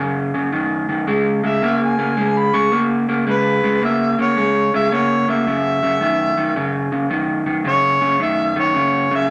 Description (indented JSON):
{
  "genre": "blues",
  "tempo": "110 BPM",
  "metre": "4/4",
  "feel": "swing 67% on 8ths",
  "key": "unclear",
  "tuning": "A4 = 442 Hz",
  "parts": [
    { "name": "electric guitar through a small old amp", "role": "riff", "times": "0.0-9.3 s", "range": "Gb2 to Bb3", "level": "-20 LUFS", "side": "equal", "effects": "spring reverb" },
    { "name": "warm harmonica", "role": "melody", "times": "1.5-9.3 s", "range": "Cb5 to Db6", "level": "-21 LUFS", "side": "equal", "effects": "overdrive" }
  ],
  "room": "moderate studio reverb, RT60 0.7 s",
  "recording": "nothing above 11.0 kHz",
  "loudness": "-18 LUFS",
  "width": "mono",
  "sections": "0.0-9.3 A section",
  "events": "none",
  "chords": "0.0 Gb5; 1.1 Db5; 5.5 Gb5"
}